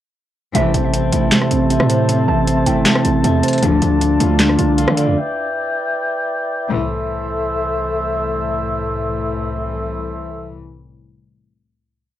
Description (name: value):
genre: hip hop, trap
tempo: 156 BPM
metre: 4/4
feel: half-time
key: A minor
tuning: A4 = 440 Hz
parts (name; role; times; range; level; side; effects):
- mellow tine electric piano; accompaniment; 0.5-5.2 s; C3 to D5; -18 LUFS; right 6 dB; medium stereo tremolo, cassette tape
- warm chamber string section; stabs; 0.5-0.9, 3.6-4.0, 6.7-10.5 s; C2 to F3; -24 LUFS; left 4 dB; cassette tape
- hard-hitting 808-style bass; bass; 0.5-5.2 s; G1 to D3; -19 LUFS; equal; none
- booming analog drum machine; drums; 0.5-5.1 s; handclaps, hi-hat, rim click, snare drum; -18 LUFS; equal; overdrive, cassette tape
- hollow square pluck; second line; 0.6-3.2 s; E5 to A5; -25 LUFS; right 6 dB; chorus, cassette tape, tape echo
- mellow woodwind section; sustained chords; 0.6-10.5 s; A3 to A5; -22 LUFS; left 1 dB; cassette tape
- electric guitar at the edge of break-up; arpeggios; 0.6-5.2 s; C4 to F5; -20 LUFS; left 6 dB; cassette tape, tape echo
room: light reverb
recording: home recording on cassette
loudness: -15 LUFS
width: side -12 dB against mid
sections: 0.6-6.7 hook; 6.7-9.8 final chord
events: none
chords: 0.6 Am; 3.6 Dm; 5.2 Em7; 6.7 Am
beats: | 0.55 0.93 1.32 1.70 | 2.09 2.47 2.86 3.24 | 3.63 4.01 4.40 4.78 | 5.17 5.55 5.93 6.32 | 6.70 7.09 7.47 7.86 | 8.24 8.63 9.01 9.40